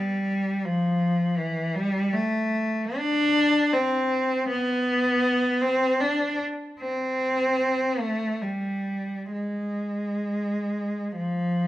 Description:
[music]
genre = classical, free, expressive piece for unaccompanied cello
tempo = free time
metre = none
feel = none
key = unclear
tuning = A4 = 440 Hz
[part]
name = rich cello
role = solo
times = 0.0-11.7 s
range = E3 to D4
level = -23 LUFS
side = equal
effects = none
[sound]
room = moderate recital hall reverb, RT60 1.4 s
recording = none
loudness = -23 LUFS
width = side -14 dB against mid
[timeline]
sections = 0.0-11.7 A section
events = none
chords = none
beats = free time

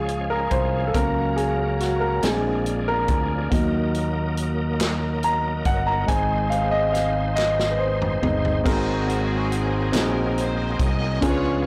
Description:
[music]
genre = slow gospel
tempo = 47 BPM (dotted quarters)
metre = 6/8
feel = straight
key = unclear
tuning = A4 = 440 Hz
[part]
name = warm grand piano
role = accompaniment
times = 0.0-11.7 s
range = Ab2 to Bb5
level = -26 LUFS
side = equal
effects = none
[part]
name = bright tonewheel organ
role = sustained chords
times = 0.0-11.7 s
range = Db3 to C5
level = -34 LUFS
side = equal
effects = fast rotary speaker, overdrive, chorus vibrato
[part]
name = dark French horn section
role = sustained chords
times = 0.0-8.6 s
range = Db4 to F5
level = -37 LUFS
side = equal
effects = none
[part]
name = fingered electric bass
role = bass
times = 0.0-11.7 s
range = G1 to Eb2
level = -28 LUFS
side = equal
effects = none
[part]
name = natural country drum kit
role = drums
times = 0.1-11.4 s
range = crash cymbal, hi-hat, kick drum, snare drum, toms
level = -29 LUFS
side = equal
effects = none
[part]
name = group handclap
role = percussion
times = 4.8-10.3 s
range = none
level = -35 LUFS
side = equal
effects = none
[part]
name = dark studio string section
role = melody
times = 8.7-11.7 s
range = C4 to Eb5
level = -32 LUFS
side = equal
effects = tape echo
[sound]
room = light reverb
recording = blown-out, overdriven recording, overdrive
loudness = -22 LUFS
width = mono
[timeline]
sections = 0.0-8.7 A section; 8.7-11.7 B section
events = grand piano solo 0.0-8.7; drum fill 7.4-8.7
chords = 0.0 Db; 0.9 Gb/Db; 2.2 Bb7; 3.5 Ebm; 6.1 Ab; 8.7 Ab9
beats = | 0.95 2.23 | 3.52 4.80 | 6.09 7.37 | 8.66 9.94 | 11.22

